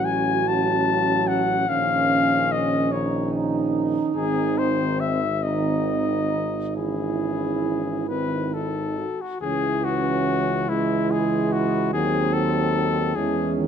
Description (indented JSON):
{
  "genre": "classical, hymn-like piece for brass band",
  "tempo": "44-50 BPM (dotted quarters)",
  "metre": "6/8",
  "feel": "rubato",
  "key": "C# minor",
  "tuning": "A4 = 439 Hz",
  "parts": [
    { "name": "clear flugelhorn", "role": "melody", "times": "0.0-13.6 s", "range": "E4 to A5", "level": "-24 LUFS", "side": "left 7 dB", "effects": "none" },
    { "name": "warm French horn section", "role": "second line", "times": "0.0-13.7 s", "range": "B#3 to F#4", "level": "-27 LUFS", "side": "right 9 dB", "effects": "none" },
    { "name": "clear trombone", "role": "accompaniment", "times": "0.0-13.7 s", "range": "D#3 to G#3", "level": "-30 LUFS", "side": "right 7 dB", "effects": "none" },
    { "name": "mellow euphonium", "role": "accompaniment", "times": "0.0-13.7 s", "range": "D#3 to F#4", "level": "-29 LUFS", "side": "left 1 dB", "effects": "none" },
    { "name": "warm tuba", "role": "bass", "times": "0.0-13.7 s", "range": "G#1 to E2", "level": "-28 LUFS", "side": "right 1 dB", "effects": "none" }
  ],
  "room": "moderate recital hall reverb, RT60 1.5 s",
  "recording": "close, detailed microphones",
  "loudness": "-20 LUFS",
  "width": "side -8 dB against mid",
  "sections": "0.0-9.4 A section; 9.4-13.7 B section",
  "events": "none",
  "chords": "0.0 F#m/A; 1.7 D#5/A#; 4.1 G#; 6.8 C#m/G#; 8.1 G#; 9.4 C#m; 11.9 D#dim7; 13.2 C#m/E",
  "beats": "0.47 | 1.69 2.92 | 4.15 5.42 | 6.75 8.09 | 9.42 10.69 | 11.94 13.16"
}